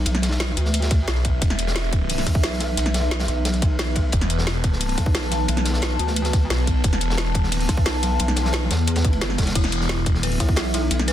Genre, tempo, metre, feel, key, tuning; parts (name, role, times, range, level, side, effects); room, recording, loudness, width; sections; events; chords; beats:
dark technical drum and bass; 177 BPM; 4/4; straight; A4 = 441 Hz
dark analog pad; sustained chords; 0.0-11.1 s; E3 to A5; -28 LUFS; left 1 dB; chorus, phaser, sidechain pumping
pulsing pluck wobble bass; bass; 0.0-11.1 s; E1 to E2; -22 LUFS; equal; chorus
crunchy breakbeat drum kit; drums; 0.1-11.1 s; hi-hat, ride cymbal, snare drum; -31 LUFS; equal; high-pass filter on cymbals, high-pass filter on hats, high-pass filter on snare, high-pass filter on room
drum and bass drum kit; drums; 0.1-11.1 s; crash cymbal, hi-hat, snare drum; -26 LUFS; left 1 dB
electronic kick drum; drums; 0.9-10.6 s; -20 LUFS; equal
phased detuned saw bass; bass; 1.1-10.4 s; E1 to B1; -23 LUFS; equal; phaser, tube saturation, sidechain pumping
swell; sound effects; 9.0-9.6 s; -37 LUFS; right 2 dB
dark detuned synth bell; arpeggios; 9.6-11.1 s; E4 to B4; -29 LUFS; left 1 dB; chorus, sidechain pumping, digital delay
little or no reverb; dense, heavily limited modern master; -19 LUFS; side -11 dB against mid
0.0-11.1 A section
swell 9.0-9.6
0.0 E5
| 0.06 0.40 0.74 1.08 | 1.42 1.76 2.10 2.44 | 2.77 3.11 3.45 3.79 | 4.13 4.47 4.81 5.15 | 5.49 5.83 6.16 6.50 | 6.84 7.18 7.52 7.86 | 8.20 8.54 8.88 9.21 | 9.55 9.89 10.23 10.57 | 10.91